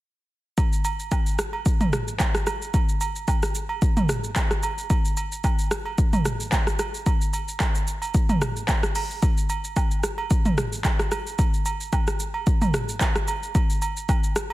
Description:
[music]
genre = amapiano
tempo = 111 BPM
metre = 4/4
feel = swing 55% on 16ths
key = none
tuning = none
[part]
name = deep house drum kit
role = drums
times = 0.6-14.5 s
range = handclaps, hi-hat, kick drum, rim click, shaker, toms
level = -22 LUFS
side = equal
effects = overdrive
[part]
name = agogo bells and woodblock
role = percussion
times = 0.6-14.5 s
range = none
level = -31 LUFS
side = right 5 dB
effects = none
[sound]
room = light reverb, digital ambience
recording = dense, heavily limited modern master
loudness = -21 LUFS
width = side -17 dB against mid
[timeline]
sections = 0.6-14.5 A section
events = drop 0.6-14.5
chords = none

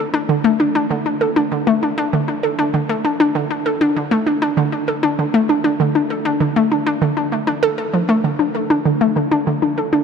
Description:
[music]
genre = ambient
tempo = 98 BPM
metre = 4/4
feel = straight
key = unclear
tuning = A4 = 440 Hz
[part]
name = hollow square pluck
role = solo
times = 0.0-10.0 s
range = D3 to A4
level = -15 LUFS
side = equal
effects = chorus, ping-pong delay
[sound]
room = wet huge ambient reverb, RT60 8.8 s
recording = none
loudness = -15 LUFS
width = side -6 dB against mid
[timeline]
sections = 0.0-10.0 A section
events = none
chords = none

